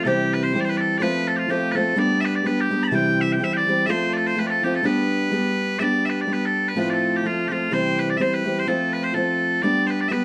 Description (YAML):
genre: celtic folk, Celtic polka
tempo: 125 BPM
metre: 2/4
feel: swing 55% on 8ths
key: G mixolydian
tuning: A4 = 438 Hz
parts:
  - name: loud bright bagpipes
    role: melody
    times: 0.0-10.2 s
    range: F4 to B5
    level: -25 LUFS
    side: equal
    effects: none
  - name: fingerpicked steel-string acoustic guitar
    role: accompaniment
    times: 0.0-10.2 s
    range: A2 to G4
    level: -24 LUFS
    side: equal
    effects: none
room: wet studio reverb, RT60 0.7 s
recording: dark, warm production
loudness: -22 LUFS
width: mono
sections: 0.0-5.8 A section; 5.8-10.2 A section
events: none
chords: 0.1 C; 1.0 F; 2.0 G; 2.9 C; 3.9 F; 4.8 G; 6.8 F/A; 7.7 C; 8.7 F; 9.6 G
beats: | 0.06 0.54 | 1.01 1.49 | 1.97 2.45 | 2.93 3.41 | 3.89 4.37 | 4.84 5.32 | 5.80 6.28 | 6.76 7.24 | 7.72 8.21 | 8.69 9.16 | 9.64 10.12